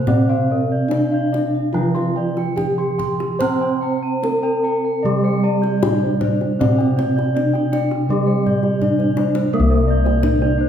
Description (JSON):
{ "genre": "Javanese gamelan", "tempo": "72-85 BPM", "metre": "4/4", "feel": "straight", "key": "C slendro", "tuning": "A4 = 440 Hz", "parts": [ { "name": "gamelan-type bronze metallophone", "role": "melody", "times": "0.0-10.7 s", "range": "Bb3-45c to C5", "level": "-22 LUFS", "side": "equal", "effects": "none" }, { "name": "gamelan-type bronze metallophone", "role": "accompaniment", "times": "0.0-10.7 s", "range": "C3 to C4", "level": "-22 LUFS", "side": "right 2 dB", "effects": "none" }, { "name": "gamelan-type bronze metallophone", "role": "arpeggios", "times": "0.0-10.7 s", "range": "Bb4-45c to C6", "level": "-26 LUFS", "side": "right 7 dB", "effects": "none" }, { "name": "gamelan-type bossed gongs", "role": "bass", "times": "0.0-10.7 s", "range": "C2 to C5", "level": "-22 LUFS", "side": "left 1 dB", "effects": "none" }, { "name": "gamelan-type bossed gongs", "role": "arpeggios", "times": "0.1-10.7 s", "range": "C5 to C6", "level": "-26 LUFS", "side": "left 8 dB", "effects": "none" }, { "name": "kendang", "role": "percussion", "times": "0.1-10.5 s", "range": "none", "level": "-25 LUFS", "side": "left 1 dB", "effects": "none" } ], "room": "wet recital hall reverb, RT60 1.2 s", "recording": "recorded in a church or concert hall", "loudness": "-16 LUFS", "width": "side -9 dB against mid", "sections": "0.0-9.5 A section; 9.5-10.7 B section", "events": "drum fill 9.0-9.5", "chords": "none" }